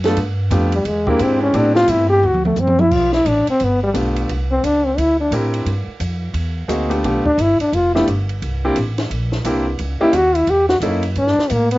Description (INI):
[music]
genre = jazz, small-group swing and bop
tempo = 175 BPM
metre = 4/4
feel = swing 62% on 8ths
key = G mixolydian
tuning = A4 = 441 Hz
[part]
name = upright bass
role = bass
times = 0.0-11.8 s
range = F1 to A2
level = -21 LUFS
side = equal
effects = none
[part]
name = compact cocktail drum kit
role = drums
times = 0.0-11.8 s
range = crash cymbal, hi-hat, kick drum, ride cymbal, snare drum, toms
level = -26 LUFS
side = right 1 dB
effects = none
[part]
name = clear grand piano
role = accompaniment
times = 0.1-11.0 s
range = G#3 to Bb4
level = -19 LUFS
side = equal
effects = cassette tape
[part]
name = warm trombone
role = melody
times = 0.7-11.8 s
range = G3 to G4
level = -15 LUFS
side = left 1 dB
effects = cassette tape
[sound]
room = light reverb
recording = home recording on cassette, nothing above 7.6 kHz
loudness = -15 LUFS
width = side -18 dB against mid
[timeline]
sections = 0.0-2.9 A section; 2.9-11.8 A section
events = trombone solo 0.0-11.8; drum fill 2.2-2.9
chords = 0.2 G9; 0.9 E7alt; 1.5 Am7; 2.2 D; 2.9 G9; 4.3 C9; 5.7 G9; 8.4 C9; 9.8 C#m6; 11.2 Gsus2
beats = | 0.17 0.52 0.86 1.20 | 1.55 1.89 2.23 2.58 | 2.92 3.26 3.61 3.95 | 4.29 4.64 4.98 5.33 | 5.67 6.01 6.36 6.70 | 7.04 7.39 7.73 8.07 | 8.42 8.76 9.10 9.45 | 9.79 10.13 10.48 10.82 | 11.17 11.51